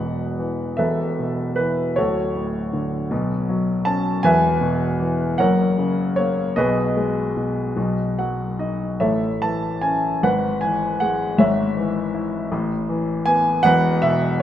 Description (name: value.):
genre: classical, lyrical solo piano.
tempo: 48-54 BPM (dotted quarters).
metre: 6/8.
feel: rubato.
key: E major.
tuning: A4 = 440 Hz.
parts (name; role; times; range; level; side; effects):
warm grand piano; solo; 0.0-14.4 s; D1 to A5; -18 LUFS; equal; none.
room: moderate concert hall reverb, RT60 2.1 s.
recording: none.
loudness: -18 LUFS.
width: side -11 dB against mid.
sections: 0.0-14.4 A section.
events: grand piano fill 7.8-9.0.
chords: 0.0 E5; 0.8 Asus2/E; 2.0 D; 3.1 Bsus2; 4.2 E; 5.4 F#; 6.6 B6; 7.8 B; 9.0 A; 10.2 E/G#; 11.4 C#m/G#; 12.5 Asus2; 13.6 E5.